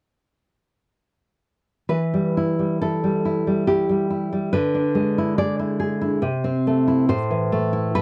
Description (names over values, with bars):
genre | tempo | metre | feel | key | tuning
romantic piece for solo classical guitar | 70 BPM | 3/4 | rubato | E minor | A4 = 439 Hz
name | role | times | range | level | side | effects
nylon-string guitar | solo | 1.9-8.0 s | A2 to D5 | -22 LUFS | equal | none
room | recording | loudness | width
light reverb | dry, close 1970s-style studio recording | -22 LUFS | mono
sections
1.9-8.0 A section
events
none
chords
1.9 Em; 4.5 E7/D; 6.2 Am/C; 7.1 Am